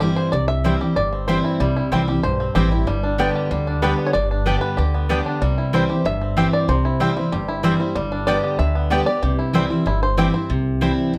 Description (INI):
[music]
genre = bluegrass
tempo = 189 BPM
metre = 4/4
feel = straight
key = C major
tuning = A4 = 440 Hz
[part]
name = bluegrass banjo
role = melody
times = 0.0-10.5 s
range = G3 to E5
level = -26 LUFS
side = equal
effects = none
[part]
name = picked steel-string acoustic guitar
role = accompaniment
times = 0.0-11.2 s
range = G2 to G4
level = -24 LUFS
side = equal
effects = none
[part]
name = upright bass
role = bass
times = 0.0-11.2 s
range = G1 to D2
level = -25 LUFS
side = equal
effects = none
[part]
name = mandolin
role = stabs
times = 0.6-10.9 s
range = B3 to G5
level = -26 LUFS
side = equal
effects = none
[sound]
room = moderate studio reverb, RT60 0.6 s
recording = none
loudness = -20 LUFS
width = mono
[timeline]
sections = 0.0-10.5 A section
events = five-string banjo solo 0.0-10.5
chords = 0.0 C; 2.9 G; 5.4 C; 8.0 G; 9.2 C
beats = 0.01 | 0.33 0.65 0.97 1.28 | 1.60 1.92 2.24 2.56 | 2.87 3.19 3.51 3.83 | 4.14 4.46 4.78 5.10 | 5.42 5.73 6.05 6.37 | 6.69 7.00 7.32 7.64 | 7.96 8.28 8.59 8.91 | 9.23 9.54 9.86 10.18 | 10.50 10.81 11.13